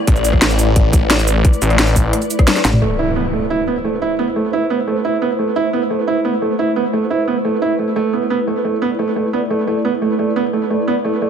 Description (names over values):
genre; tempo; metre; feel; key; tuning
dark technical drum and bass; 175 BPM; 4/4; straight; A minor; A4 = 437 Hz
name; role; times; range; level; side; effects
swarming drone; sustained chords; 0.0-11.3 s; A3 to D5; -20 LUFS; equal; built-in reverb, sidechain pumping
snarling distorted saw bass; bass; 0.1-2.1 s; A1; -16 LUFS; left 1 dB; distortion, sidechain pumping
drum and bass drum kit; drums; 0.1-2.8 s; cabasa, hi-hat, rim click, snare drum, toms; -16 LUFS; equal; overdrive
electronic kick drum; drums; 0.1-2.5 s; none; -12 LUFS; equal; none
pulsing pluck wobble bass; bass; 2.6-2.8 s; A1; -17 LUFS; equal; chorus
felt-muted upright piano; arpeggios; 2.8-11.3 s; A3 to E4; -18 LUFS; right 4 dB; sidechain pumping, digital delay
impact; sound effects; 2.8-4.2 s; none; -25 LUFS; left 1 dB; none
room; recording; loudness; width
moderate plate reverb, RT60 1.7 s; none; -14 LUFS; side -8 dB against mid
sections
0.0-2.8 A section; 2.8-11.3 B section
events
drop 0.0-2.8; drum fill 2.5-2.8; impact 2.8-4.2; filter sweep on synth drone 2.8-11.3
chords
0.0 A5; 2.8 Am